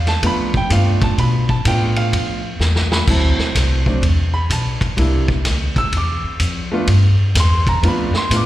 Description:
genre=jazz, small-group swing and bop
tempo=126 BPM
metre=4/4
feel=swing 66% on 8ths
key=G mixolydian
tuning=A4 = 439 Hz
part: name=warm baby grand piano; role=accompaniment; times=0.0-8.5 s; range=F#3 to E6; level=-21 LUFS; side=right 2 dB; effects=slapback echo
part: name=upright bass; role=bass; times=0.0-8.5 s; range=B1 to B2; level=-16 LUFS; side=equal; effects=none
part: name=vintage drum kit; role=drums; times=0.1-8.5 s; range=crash cymbal, hi-hat, kick drum, ride cymbal, snare drum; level=-21 LUFS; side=equal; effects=none
room=little or no reverb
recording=live gig heard through the venue's PA, recital hall reverb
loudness=-14 LUFS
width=side -14 dB against mid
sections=0.0-8.5 A section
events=drum fill 2.6-3.1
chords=0.0 G9; 3.1 D9; 5.0 C9; 6.9 G9

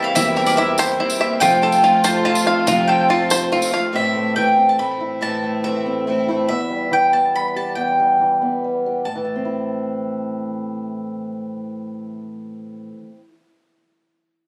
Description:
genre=indie folk with a building arrangement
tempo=141 BPM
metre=3/4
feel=straight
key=A minor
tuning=A4 = 440 Hz
part: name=mandolin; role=melody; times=0.0-12.9 s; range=D5 to B5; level=-21 LUFS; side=equal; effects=slapback echo
part: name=dark upright piano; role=accompaniment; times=0.0-4.0 s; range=F1 to E5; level=-32 LUFS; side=equal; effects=none
part: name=picked twelve-string acoustic guitar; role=accompaniment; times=0.0-6.5 s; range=F2 to G4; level=-25 LUFS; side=equal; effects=none
part: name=warm chamber string section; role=sustained chords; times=0.0-3.9 s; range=C3 to F4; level=-29 LUFS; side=equal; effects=none
part: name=bluegrass banjo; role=arpeggios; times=0.0-3.9 s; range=E4 to F5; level=-22 LUFS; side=equal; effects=slapback echo
part: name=fingered electric bass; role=bass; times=0.2-3.5 s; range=E1 to F1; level=-30 LUFS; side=equal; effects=none
part: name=tambourine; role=percussion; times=0.2-3.8 s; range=none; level=-28 LUFS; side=equal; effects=none
part: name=fingerpicked acoustic archtop guitar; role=accompaniment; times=4.0-13.3 s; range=E2 to G4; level=-26 LUFS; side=equal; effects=none
room=light reverb, small room ambience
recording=recorded on a phone in the room, club reverb, compression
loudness=-19 LUFS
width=mono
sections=0.0-3.9 A section; 3.9-9.1 B section; 9.1-11.6 C section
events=none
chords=0.0 C7/E; 1.4 F; 3.9 Am; 6.5 Em; 9.1 Am

